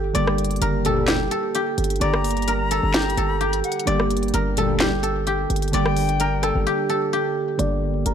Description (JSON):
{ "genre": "hip hop, trap", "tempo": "129 BPM", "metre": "4/4", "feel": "half-time", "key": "G minor", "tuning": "A4 = 440 Hz", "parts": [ { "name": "guzheng", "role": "melody", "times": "0.0-8.1 s", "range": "G4 to D5", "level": "-23 LUFS", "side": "equal", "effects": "low-pass filter" }, { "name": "hard-hitting 808-style bass", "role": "bass", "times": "0.0-8.1 s", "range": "F#1 to G1", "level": "-24 LUFS", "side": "equal", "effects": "none" }, { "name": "glassy digital keys", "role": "accompaniment", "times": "0.1-8.1 s", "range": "D3 to G4", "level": "-27 LUFS", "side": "right 2 dB", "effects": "chorus, low-pass filter" }, { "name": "trap drum kit", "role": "drums", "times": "0.2-8.1 s", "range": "handclaps, hi-hat, rim click, snare drum", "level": "-26 LUFS", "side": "equal", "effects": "none" }, { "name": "mellow synth brass", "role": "stabs", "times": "0.8-1.2, 4.6-4.9 s", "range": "D2 to G3", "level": "-26 LUFS", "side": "left 1 dB", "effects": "chorus" }, { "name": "bright reedy jazz flute", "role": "second line", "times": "2.0-6.6 s", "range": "F#5 to Bb5", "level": "-28 LUFS", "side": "left 6 dB", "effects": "tape echo" } ], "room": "digital ambience", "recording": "dark, warm production", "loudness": "-19 LUFS", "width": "side -8 dB against mid", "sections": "0.0-7.6 A section", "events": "break 6.7-7.6", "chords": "0.0 Gm" }